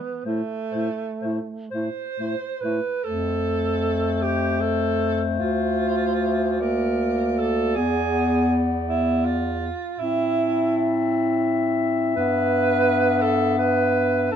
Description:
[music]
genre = classical, lyrical piece for single-reed quartet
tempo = 40-57 BPM (dotted quarters)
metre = 6/8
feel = rubato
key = A minor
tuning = A4 = 441 Hz
[part]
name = warm alto saxophone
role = second line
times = 0.0-14.4 s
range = A3 to C5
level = -25 LUFS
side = right 5 dB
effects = none
[part]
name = mellow clarinet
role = melody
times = 0.2-14.4 s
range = C5 to A5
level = -29 LUFS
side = left 7 dB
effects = none
[part]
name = dark clarinet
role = accompaniment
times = 0.3-14.4 s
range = A3 to D4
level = -26 LUFS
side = left 4 dB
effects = none
[part]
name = warm bass clarinet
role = bass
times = 0.3-14.4 s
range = D2 to A2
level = -25 LUFS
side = right 1 dB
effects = none
[sound]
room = light reverb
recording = minimal, uncompressed stereo recording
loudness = -20 LUFS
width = side -8 dB against mid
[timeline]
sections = 0.0-3.0 A section; 3.0-14.4 B section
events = none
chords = 0.3 Am; 3.0 F; 5.4 Dm7; 6.6 Bb/D; 7.8 E7; 10.0 Am; 12.2 Em/G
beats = | 0.25 1.72 | 3.05 4.22 | 5.39 6.61 | 7.76 8.88 | 9.98 11.09 | 12.17 13.23 | 14.32

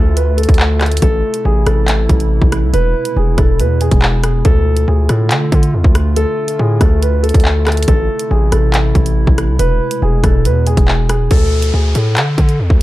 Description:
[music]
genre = hip hop, drill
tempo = 140 BPM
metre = 4/4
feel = half-time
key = unclear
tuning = A4 = 439 Hz
[part]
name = dark grand piano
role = melody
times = 0.0-12.8 s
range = G#4 to B4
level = -19 LUFS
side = equal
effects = none
[part]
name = warbly tape-like pad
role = sustained chords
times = 0.0-11.3 s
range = B2 to F4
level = -21 LUFS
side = right 1 dB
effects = chorus, built-in reverb
[part]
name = distorted 808-style bass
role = bass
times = 0.0-12.8 s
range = E1 to D3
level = -14 LUFS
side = equal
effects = distortion
[part]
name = drill drum kit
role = drums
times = 0.2-12.8 s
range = handclaps, hi-hat, kick drum, rim click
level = -14 LUFS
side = equal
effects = none
[part]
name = downlifter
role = sound effects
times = 11.3-12.8 s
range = none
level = -26 LUFS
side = equal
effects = none
[sound]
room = little or no reverb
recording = dark, warm production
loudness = -11 LUFS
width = side -16 dB against mid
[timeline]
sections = 0.0-11.3 A section; 11.3-12.8 B section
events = none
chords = 0.0 Dm; 1.0 Am; 2.7 E; 4.5 Dm; 7.9 Am; 9.6 E; 11.3 D5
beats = 0.17 0.59 | 1.02 1.45 1.88 2.31 | 2.74 3.17 3.59 4.02 | 4.45 4.88 5.31 5.74 | 6.17 6.59 7.02 7.45 | 7.88 8.31 8.74 9.16 | 9.59 10.02 10.45 10.88 | 11.31 11.74 12.16 12.59

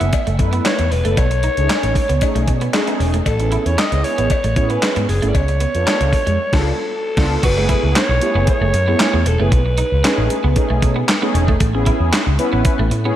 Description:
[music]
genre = early-eighties boogie funk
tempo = 115 BPM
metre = 4/4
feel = straight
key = F# dorian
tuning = A4 = 440 Hz
[part]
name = breathy alto saxophone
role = melody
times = 0.0-11.4 s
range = G#4 to E5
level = -21 LUFS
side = equal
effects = tape echo
[part]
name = mellow synth brass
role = accompaniment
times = 0.0-13.2 s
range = G#3 to B4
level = -22 LUFS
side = equal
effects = chorus
[part]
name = electric guitar at the edge of break-up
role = riff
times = 0.0-13.2 s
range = G#3 to F#4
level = -26 LUFS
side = right 4 dB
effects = analog chorus
[part]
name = picked electric bass with an envelope filter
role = bass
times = 0.0-13.1 s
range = E1 to B2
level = -18 LUFS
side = equal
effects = none
[part]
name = crisp 8-bit digital drum machine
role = drums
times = 0.0-13.0 s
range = crash cymbal, handclaps, hi-hat, kick drum, snare drum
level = -19 LUFS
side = equal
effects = overdrive
[part]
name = cowbell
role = percussion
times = 0.1-6.0 s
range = none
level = -30 LUFS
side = left 8 dB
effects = none
[sound]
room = moderate lush hall reverb, RT60 2.4 s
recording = dreamy mix soaked in reverb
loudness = -14 LUFS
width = side -12 dB against mid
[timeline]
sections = 0.0-7.4 A section; 7.4-13.2 B section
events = band accent 6.4-7.4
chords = 0.0 F#m11; 1.2 B13; 3.3 Amaj9; 5.3 C#7b9b13; 7.4 F#m11; 9.5 B13; 11.6 Amaj9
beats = 0.13 0.65 | 1.17 1.70 2.22 2.74 | 3.26 3.78 4.30 4.83 | 5.35 5.87 6.39 6.91 | 7.43 7.96 8.48 9.00 | 9.52 10.04 10.56 11.09 | 11.61 12.13 12.65

